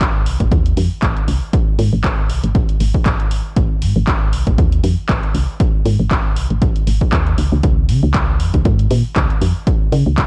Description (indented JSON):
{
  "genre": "deep house",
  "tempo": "118 BPM",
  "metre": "4/4",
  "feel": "swing 55% on 16ths",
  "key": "Ab major",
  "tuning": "A4 = 442 Hz",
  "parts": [
    { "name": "woody FM bass", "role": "bass", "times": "0.0-10.3 s", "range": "Ab1 to Db3", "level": "-19 LUFS", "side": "equal", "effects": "sidechain pumping" },
    { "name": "electronic kick drum", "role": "drums", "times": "0.0-10.3 s", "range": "none", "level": "-19 LUFS", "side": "equal", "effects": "none" },
    { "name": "punchy analog drum machine", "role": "drums", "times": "0.0-10.3 s", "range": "handclaps, hi-hat", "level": "-26 LUFS", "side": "equal", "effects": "none" }
  ],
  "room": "little or no reverb",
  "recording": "cassette tape",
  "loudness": "-16 LUFS",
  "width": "mono",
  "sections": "0.0-10.3 A section",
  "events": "none",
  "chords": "none"
}